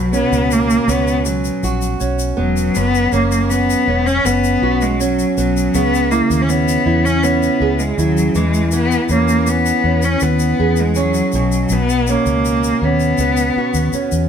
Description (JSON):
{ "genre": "acoustic pop", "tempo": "80 BPM", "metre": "4/4", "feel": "straight", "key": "B major", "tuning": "A4 = 440 Hz", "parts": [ { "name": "rich cello", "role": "melody", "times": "0.0-14.3 s", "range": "F#3 to C#4", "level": "-17 LUFS", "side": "left 2 dB", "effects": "none" }, { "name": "fingerpicked steel-string acoustic guitar", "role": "accompaniment", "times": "0.0-14.3 s", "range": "F#2 to G#4", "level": "-19 LUFS", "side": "right 4 dB", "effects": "none" }, { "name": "vintage muted fingered electric bass", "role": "bass", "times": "0.0-14.3 s", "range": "E1 to E2", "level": "-19 LUFS", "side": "left 1 dB", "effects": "none" }, { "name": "tube shaker", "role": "percussion", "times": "0.1-14.3 s", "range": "none", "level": "-29 LUFS", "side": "left 5 dB", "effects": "none" } ], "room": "light reverb", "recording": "band playing live in one room", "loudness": "-13 LUFS", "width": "side -8 dB against mid", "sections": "0.0-14.3 A section", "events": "none", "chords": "0.0 Bsus2; 2.8 F#sus4; 5.7 C#m; 8.4 E6; 11.3 Bsus2", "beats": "0.52 1.26 2.01 | 2.76 3.50 4.25 5.00 | 5.75 6.49 7.24 7.98 | 8.73 9.47 10.22 10.96 | 11.71 12.45 13.19 13.94" }